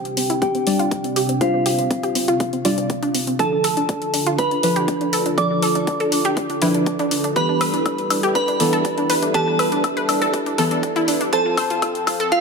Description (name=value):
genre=progressive house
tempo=121 BPM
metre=4/4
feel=straight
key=D dorian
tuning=A4 = 437 Hz
part: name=glassy synth bell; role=melody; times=0.0-12.4 s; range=F4 to D6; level=-23 LUFS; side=right 1 dB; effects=chorus, low-pass filter, ping-pong delay
part: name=soft round pluck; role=second line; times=0.0-12.4 s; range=F5 to D6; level=-29 LUFS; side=equal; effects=none
part: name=filtered supersaw swell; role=sustained chords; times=0.0-12.4 s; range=C3 to G5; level=-26 LUFS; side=right 1 dB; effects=vintage 12-bit sampler grit, sidechain pumping, low-pass filter
part: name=deep mellow chord stab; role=stabs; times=0.0-12.4 s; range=E3 to D5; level=-24 LUFS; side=equal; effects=chorus, sidechain pumping, ping-pong delay
part: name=electronic hi-hat and woodblock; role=drums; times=0.1-12.4 s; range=none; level=-25 LUFS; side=left 4 dB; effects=high-pass filter on hats, high-pass filter on perc
part: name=analog pluck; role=arpeggios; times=0.2-12.4 s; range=C4 to C5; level=-23 LUFS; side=equal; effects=chorus, sidechain pumping, ping-pong delay
part: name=electronic kick drum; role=drums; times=0.4-12.4 s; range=none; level=-27 LUFS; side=equal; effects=high-pass filter on kick
room=moderate lush hall reverb, RT60 1.9 s, digital ambience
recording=high-pass filter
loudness=-17 LUFS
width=side -4 dB against mid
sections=0.0-12.4 A section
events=build-up 0.0-12.4; filter sweep on synth arpeggio sound 0.0-12.4; filter sweep on supersaw synth 0.0-12.4; filter sweep on synth bell 0.0-12.4; drum fill 7.4-12.4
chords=0.0 Csus2; 3.4 Dm; 7.4 G6; 11.3 F